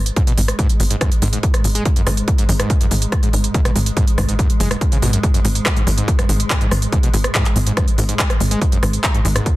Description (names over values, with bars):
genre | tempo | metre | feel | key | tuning
driving peak-time techno | 142 BPM | 4/4 | straight | unclear | A4 = 440 Hz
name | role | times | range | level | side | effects
tight sequencer bass | bass | 0.0-9.4 s | F#1 to G#1 | -18 LUFS | equal | sidechain pumping
swarming drone | drone | 0.1-9.6 s | G#2 to G#3 | -27 LUFS | equal | built-in reverb, sidechain pumping
techno drum kit | drums | 0.1-9.5 s | handclaps, hi-hat, rim click | -22 LUFS | right 1 dB | soft clipping on snare
screaming distorted acid line | riff | 0.2-9.5 s | G#1 to G#3 | -24 LUFS | equal | distortion, chorus, cassette tape, sidechain pumping, tape echo
electronic kick drum | drums | 0.2-9.5 s | none | -17 LUFS | equal | none
room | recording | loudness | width
light reverb | dense, heavily limited modern master | -14 LUFS | side -18 dB against mid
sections
0.0-9.6 A section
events
none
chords
none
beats
| 0.17 0.59 1.01 1.43 | 1.85 2.28 2.70 3.12 | 3.55 3.97 4.39 4.81 | 5.24 5.66 6.08 6.50 | 6.93 7.35 7.77 8.19 | 8.62 9.04 9.46